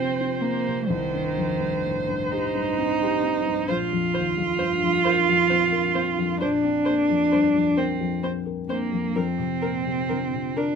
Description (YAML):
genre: neoclassical piano and strings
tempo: 44 BPM (dotted quarters)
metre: 6/8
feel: rubato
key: Bb major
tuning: A4 = 441 Hz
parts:
  - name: dark cello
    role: second line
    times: 0.0-10.8 s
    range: Eb3 to F4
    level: -23 LUFS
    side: right 4 dB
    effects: none
  - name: dark viola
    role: accompaniment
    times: 0.0-10.6 s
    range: Bb4 to C5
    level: -29 LUFS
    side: right 2 dB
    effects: none
  - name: felt-muted upright piano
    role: accompaniment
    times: 0.0-10.8 s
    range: Bb1 to Bb4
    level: -27 LUFS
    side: left 7 dB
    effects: none
room: light reverb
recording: minimal, uncompressed stereo recording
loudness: -21 LUFS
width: side -6 dB against mid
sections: 0.0-10.8 A section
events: none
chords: 0.0 Fsus4; 0.9 Cm; 3.7 Bbsus2; 9.2 Fsus4